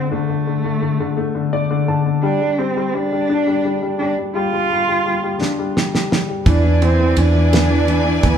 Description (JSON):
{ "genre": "six-eight pop ballad", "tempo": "57 BPM (dotted quarters)", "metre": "6/8", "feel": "straight", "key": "unclear", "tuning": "A4 = 440 Hz", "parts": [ { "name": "dark cello", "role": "melody", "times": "0.0-8.4 s", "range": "A3 to F4", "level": "-20 LUFS", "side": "right 2 dB", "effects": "none" }, { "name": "warm upright piano", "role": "accompaniment", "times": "0.0-8.4 s", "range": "D3 to A5", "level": "-20 LUFS", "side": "left 4 dB", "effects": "none" }, { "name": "damped 70s drum kit", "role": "drums", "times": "5.4-8.4 s", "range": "kick drum, ride cymbal, snare drum", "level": "-18 LUFS", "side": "right 2 dB", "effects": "none" }, { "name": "bright studio string section", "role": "sustained chords", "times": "6.5-8.4 s", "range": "E4 to G#5", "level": "-23 LUFS", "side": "right 2 dB", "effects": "none" }, { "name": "vintage muted fingered electric bass", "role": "bass", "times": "6.5-8.4 s", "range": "D2 to E2", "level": "-15 LUFS", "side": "right 1 dB", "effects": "none" } ], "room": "moderate large studio reverb, RT60 0.9 s", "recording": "band playing live in one room", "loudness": "-15 LUFS", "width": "side -8 dB against mid", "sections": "0.0-8.4 A section", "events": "upright piano fill 1.2-2.2; drum fill 5.4-6.5", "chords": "0.0 D5; 2.2 G5; 6.5 E7" }